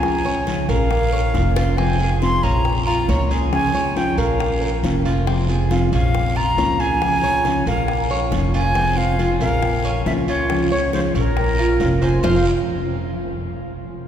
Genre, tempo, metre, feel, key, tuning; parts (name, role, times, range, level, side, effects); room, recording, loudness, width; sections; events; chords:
latin, Cuban son and guajira; 138 BPM; 4/4; straight; F minor; A4 = 440 Hz
breathy silver concert flute; melody; 0.0-12.4 s; Bb4 to C6; -23 LUFS; equal
nylon-string guitar; accompaniment; 0.0-12.4 s; F2 to F4; -24 LUFS; left 2 dB
Cuban tres; arpeggios; 0.0-12.4 s; C4 to F5; -25 LUFS; right 2 dB
upright bass; bass; 0.0-12.4 s; F1 to Db2; -21 LUFS; equal
bongos; percussion; 0.0-12.3 s; -30 LUFS; left 4 dB
guiro; percussion; 0.0-12.3 s; -36 LUFS; right 3 dB
wet cathedral reverb, RT60 6.2 s; recorded in a church or concert hall; -16 LUFS; side -9 dB against mid
0.0-8.8 A section; 8.8-12.2 B section; 12.2-14.0 C section
drum fill 1.6
0.0 Bbm; 1.8 Fm; 2.7 Bbm; 5.3 Fm; 6.1 Bbm; 8.8 Fm; 9.6 Bbm; 10.5 Db; 11.4 Bbm; 12.2 F5